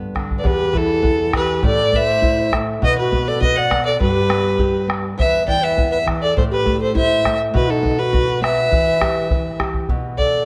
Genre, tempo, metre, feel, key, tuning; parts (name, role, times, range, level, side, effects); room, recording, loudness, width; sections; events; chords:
andean folk, Andean ensemble; 102 BPM; 2/4; straight; E minor; A4 = 439 Hz
nylon-string guitar; accompaniment; 0.0-10.4 s; E2 to B4; -25 LUFS; equal
bombo; percussion; 0.2-10.3 s; -24 LUFS; equal
warm fiddle; melody; 0.4-10.4 s; A4 to G5; -21 LUFS; equal
mellow large quena; second line; 0.4-10.4 s; D#4 to D5; -25 LUFS; equal
moderate concert hall reverb, RT60 2.2 s; dark, warm production; -18 LUFS; mono
0.4-9.9 A section
0.4 E5; 1.6 Am; 2.8 B5; 4.0 G; 5.2 E5; 6.4 A5; 7.5 B5; 8.7 Em; 9.9 N.C.